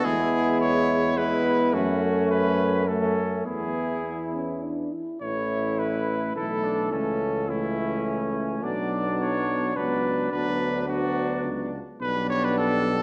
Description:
classical, brass quintet; 106 BPM; 3/4; straight; A major; A4 = 441 Hz
warm trumpet; melody; 0.0-13.0 s; E4 to D5; -31 LUFS; equal
clear flugelhorn; second line; 0.0-13.0 s; C#4 to E4; -34 LUFS; equal
clear euphonium; accompaniment; 0.0-13.0 s; E3 to A3; -35 LUFS; equal
mellow French horn; accompaniment; 0.0-13.0 s; A3 to E4; -32 LUFS; equal
warm tuba; bass; 0.0-13.0 s; A1 to F#2; -32 LUFS; equal
wet recital hall reverb, RT60 1.5 s; worn, warbling old tape, cassette tape, warbly pitch drift; -26 LUFS; mono
0.0-5.2 A section; 5.2-13.0 B section
0.0 E; 1.7 F#m; 3.5 E; 5.2 A; 6.9 A/C#; 8.6 Bm; 10.3 Bm/D; 12.0 G/B
| 0.04 0.60 1.17 | 1.74 2.30 2.88 | 3.46 4.05 4.63 | 5.22 5.79 6.36 | 6.92 7.49 8.06 | 8.62 9.19 9.76 | 10.32 10.88 11.44 | 12.01 12.58

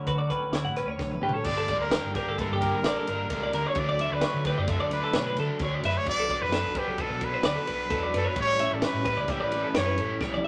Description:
math rock and midwest emo; 130 BPM; 5/4; straight; D major; A4 = 440 Hz
twangy electric guitar; accompaniment; 0.0-3.8 s; D2 to F#4; -40 LUFS; equal; tremolo
twelve-string electric guitar; arpeggios; 0.0-10.5 s; G4 to F#5; -33 LUFS; equal
hollow-body short-scale fingered electric bass; bass; 0.1-10.5 s; G1 to D3; -35 LUFS; equal
compact cocktail drum kit; drums; 0.1-10.5 s; crash cymbal, hi-hat, kick drum, ride cymbal, snare drum, toms; -35 LUFS; equal
clear trumpet; melody; 1.2-10.2 s; G4 to D5; -32 LUFS; equal
overdriven electric guitar; riff; 1.5-10.5 s; G2 to E4; -35 LUFS; equal; harmonic tremolo
wet studio reverb, RT60 0.7 s; -27 LUFS; mono
0.0-1.5 A section; 1.5-10.5 B section
drum fill 1.0-1.5, 10.2
0.0 Dmaj9; 1.5 Gmadd9; 3.8 Dmaj7; 6.1 Bm7; 8.4 A9
0.07 0.54 1.00 | 1.46 1.93 2.39 2.85 3.31 | 3.77 4.23 4.69 5.15 5.61 | 6.07 6.53 6.99 7.45 7.91 | 8.37 8.83 9.29 9.75 10.21

